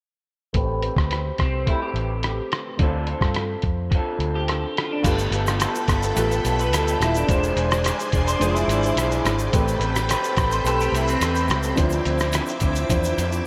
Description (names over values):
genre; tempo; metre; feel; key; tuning
indie pop, bedroom pop; 107 BPM; 4/4; straight; A minor; A4 = 441 Hz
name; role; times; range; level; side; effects
dark upright piano; accompaniment; 0.5-13.5 s; F3 to C5; -31 LUFS; equal; cassette tape, low-pass filter
electric guitar through a small old amp; accompaniment; 0.5-13.5 s; D3 to C5; -29 LUFS; equal; analog chorus, warbly pitch drift, low-pass filter
vintage muted fingered electric bass; bass; 0.5-13.4 s; D#1 to G2; -27 LUFS; equal; none
lo-fi sampler-style drum kit; drums; 0.5-13.4 s; crash cymbal, hi-hat, kick drum, rim click, shaker; -27 LUFS; equal; none
electric guitar through a small old amp; second line; 1.4-11.8 s; C4 to C5; -31 LUFS; equal; analog chorus, diffuse ambient delay
tube shaker; percussion; 5.0-13.5 s; none; -42 LUFS; equal; none
string machine, violins; sustained chords; 5.1-13.5 s; C4 to D6; -33 LUFS; equal; ensemble chorus
room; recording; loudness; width
wet lush hall reverb, RT60 1.7 s; dreamy mix soaked in reverb; -22 LUFS; mono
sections
0.5-5.0 A section; 5.0-13.5 B section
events
filter sweep 0.5-5.0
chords
0.5 Am9; 2.8 Dm7; 5.0 G9; 7.3 E7b9b13; 9.5 Am9; 11.8 Dm9